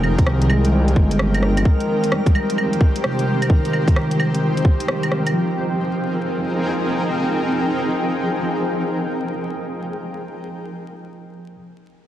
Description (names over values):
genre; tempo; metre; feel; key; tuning
future garage; 130 BPM; 4/4; swing 64% on 16ths; F minor; A4 = 439 Hz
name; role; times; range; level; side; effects
overdriven tine electric piano; accompaniment; 0.0-11.6 s; C3 to Eb4; -24 LUFS; equal; phaser, sidechain pumping, low-pass filter, tape echo
granular cloud pad; sustained chords; 0.0-9.8 s; Eb3 to G5; -23 LUFS; equal; built-in reverb, vintage 12-bit sampler grit, sidechain pumping
swelling detuned saw bass; bass; 0.0-1.6 s; F1 to C2; -18 LUFS; equal; sidechain pumping
garage drum kit; drums; 0.0-5.3 s; claves, hi-hat, rim click; -25 LUFS; right 1 dB; overdrive, small room ambience, soft clipping on snare
backwards swelling texture; texture; 0.0-5.4 s; Bb4; -30 LUFS; equal; built-in reverb
electronic kick drum; drums; 0.2-4.8 s; none; -15 LUFS; equal; overdrive, small room ambience
room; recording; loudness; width
moderate scoring stage reverb, RT60 1.9 s; dense, heavily limited modern master, vinyl crackle; -17 LUFS; side -12 dB against mid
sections
0.0-5.3 A section; 5.3-9.0 B section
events
filter sweep on tine electric piano 0.0-5.3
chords
0.0 Fm11